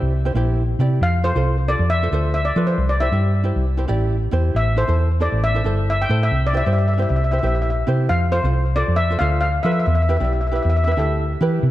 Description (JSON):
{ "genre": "calypso", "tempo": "136 BPM", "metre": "4/4", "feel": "swing 54% on 16ths", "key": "unclear", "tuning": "A4 = 439 Hz", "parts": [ { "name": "steel pan", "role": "melody", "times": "0.0-11.1 s", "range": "C5 to G5", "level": "-23 LUFS", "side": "left 2 dB", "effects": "ping-pong delay" }, { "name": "ukulele", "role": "accompaniment", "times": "0.0-11.6 s", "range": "E4 to D5", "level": "-26 LUFS", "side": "right 2 dB", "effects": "none" }, { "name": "hollow-body short-scale fingered electric bass", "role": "bass", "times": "0.0-11.7 s", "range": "G1 to F3", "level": "-18 LUFS", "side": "equal", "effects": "none" } ], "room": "light reverb", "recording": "dark, warm production", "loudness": "-17 LUFS", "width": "side -14 dB against mid", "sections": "0.0-11.6 A section", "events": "none", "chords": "0.0 C7; 1.0 F; 2.8 C; 4.6 Am7; 6.3 C7; 8.1 F; 9.9 Em" }